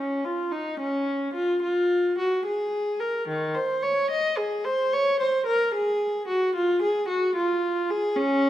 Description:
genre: classical, baroque-style suite movement for unaccompanied viola.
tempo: 73 BPM (dotted quarters).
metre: 12/8.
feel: rubato.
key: unclear.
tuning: A4 = 440 Hz.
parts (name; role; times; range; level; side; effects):
warm viola; solo; 0.0-8.5 s; Eb3 to Eb5; -23 LUFS; equal; none.
room: moderate recital hall reverb, RT60 1.4 s.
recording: minimal, uncompressed stereo recording.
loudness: -23 LUFS.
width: side -12 dB against mid.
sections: 0.0-8.5 A section.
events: none.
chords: none.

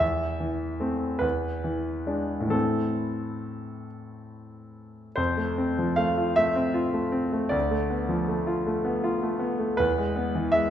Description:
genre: classical, romantic character piece for solo piano.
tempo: 44-54 BPM (dotted quarters).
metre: 6/8.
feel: rubato.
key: A minor.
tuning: A4 = 438 Hz.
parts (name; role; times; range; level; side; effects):
clear grand piano; solo; 0.0-10.7 s; D2 to F5; -24 LUFS; equal; none.
room: moderate concert hall reverb, RT60 1.8 s.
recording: minimal, uncompressed stereo recording.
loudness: -24 LUFS.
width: side -10 dB against mid.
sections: 0.0-5.2 A section; 5.2-10.7 B section.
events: none.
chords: 0.0 Am/E; 1.2 E7; 2.5 Am; 5.2 F; 7.5 Bm7b5/D; 9.8 E.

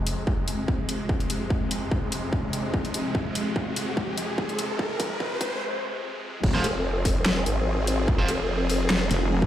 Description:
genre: heavy wobble dubstep.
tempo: 146 BPM.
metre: 4/4.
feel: swing 54% on 16ths, half-time.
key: F minor.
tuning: A4 = 444 Hz.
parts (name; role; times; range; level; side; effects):
supersaw chords; sustained chords; 0.0-9.5 s; F2 to Ab4; -30 LUFS; equal; phaser, vintage 12-bit sampler grit, sidechain pumping.
riser; sound effects; 1.6-5.6 s; none; -33 LUFS; equal; none.
dubstep drum kit; drums; 0.1-9.2 s; crash cymbal, hi-hat, snare drum; -28 LUFS; left 1 dB; studio ambience.
electronic kick drum; drums; 0.3-9.5 s; none; -27 LUFS; equal; distortion, studio ambience.
wobble bass; bass; 6.4-6.6, 9.1-9.5 s; F1; -23 LUFS; equal; chorus, overdrive.
distorted electric guitar; stabs; 6.5-8.3 s; F4 to C5; -32 LUFS; right 2 dB; overdrive, dub echo.
vowel-sweep wobble bass; bass; 6.6-9.1 s; F1 to Ab1; -25 LUFS; equal; chorus, overdrive.
room: light reverb.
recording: played on a big sound system in a bare room, large studio reverb, high-pass filter.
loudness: -24 LUFS.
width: side -11 dB against mid.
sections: 0.0-6.4 A section; 6.4-9.5 B section.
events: build-up 0.0-6.4; filter sweep 0.0-6.4; riser 1.6-5.6; drum fill 3.1-5.6; break 5.6-6.4; drop 6.4-9.5.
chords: 0.0 Fm.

